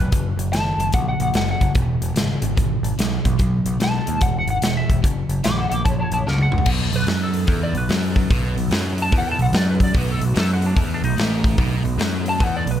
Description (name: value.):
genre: blues rock power trio and southern rock.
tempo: 146 BPM.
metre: 4/4.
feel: swing 65% on 8ths.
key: B mixolydian.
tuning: A4 = 440 Hz.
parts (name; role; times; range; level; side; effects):
lightly driven lead guitar; melody; 0.0-12.8 s; D4 to D6; -26 LUFS; left 2 dB; wah.
sludgy distorted guitar; riff; 0.0-12.8 s; E2 to G#3; -24 LUFS; equal; overdrive.
growling picked electric bass; bass; 0.0-12.8 s; E1 to F#2; -23 LUFS; equal; overdrive.
big rock drum kit; drums; 0.1-12.7 s; crash cymbal, hi-hat, kick drum, snare drum, toms; -21 LUFS; equal; none.
overdriven tonewheel organ; sustained chords; 6.6-12.8 s; A3 to A4; -35 LUFS; right 4 dB; slow rotary speaker, chorus vibrato.
room: little or no reverb.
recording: none.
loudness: -17 LUFS.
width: side -10 dB against mid.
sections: 0.0-6.7 A section; 6.7-12.8 B section.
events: drum fill 6.3-6.7; lead electric guitar solo 6.7-12.8.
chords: 0.1 F#; 1.8 E; 3.4 B7; 4.2 E; 5.0 F#; 6.7 B7.